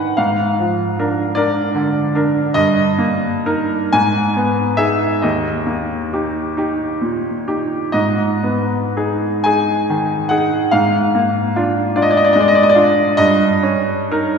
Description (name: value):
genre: classical, romantic nocturne for solo piano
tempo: 38-52 BPM (dotted quarters)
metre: 12/8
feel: rubato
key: unclear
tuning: A4 = 440 Hz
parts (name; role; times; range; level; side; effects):
- bright baby grand piano; solo; 0.0-14.4 s; D#2 to G#5; -14 LUFS; equal; none
room: wet concert hall reverb, RT60 2.3 s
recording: recorded in a church or concert hall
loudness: -14 LUFS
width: side -6 dB against mid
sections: 0.0-14.4 A section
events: none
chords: 0.2 A#7/G#; 2.6 D#/G; 3.9 G#m; 5.2 D#; 7.9 G#m; 10.7 A#7/G#; 13.2 D#7/G